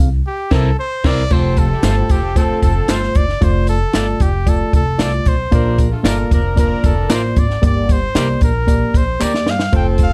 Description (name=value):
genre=uptempo 1960s-style soul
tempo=114 BPM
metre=4/4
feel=straight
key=F major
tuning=A4 = 440 Hz
part: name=reed electric piano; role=accompaniment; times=0.0-10.1 s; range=G2 to E5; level=-24 LUFS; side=equal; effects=overdrive
part: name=upright bass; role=bass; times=0.0-10.1 s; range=F1 to G2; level=-21 LUFS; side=equal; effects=none
part: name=clear trumpet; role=melody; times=0.3-10.1 s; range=G4 to G5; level=-24 LUFS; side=equal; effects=slapback echo
part: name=electric guitar at the edge of break-up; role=stabs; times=0.5-9.3 s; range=E4 to D5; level=-27 LUFS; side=equal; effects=none
part: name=compact cocktail drum kit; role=drums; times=0.5-10.1 s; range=crash cymbal, hi-hat, kick drum, snare drum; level=-18 LUFS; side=equal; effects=none
part: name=warm horn section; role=second line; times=1.3-10.1 s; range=F3 to Bb4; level=-28 LUFS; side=equal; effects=slapback echo
part: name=tambourine and handclaps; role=percussion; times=1.3-10.1 s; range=none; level=-34 LUFS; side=equal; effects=none
room=little or no reverb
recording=dark, warm production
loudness=-15 LUFS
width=mono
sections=0.0-1.3 A section; 1.3-10.1 B section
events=trumpet solo 0.0-1.3; band accent 0.3-1.3; drum fill 9.2-9.7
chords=0.3 C7; 1.3 F; 3.4 Dm/F; 5.5 Bb; 7.6 Gm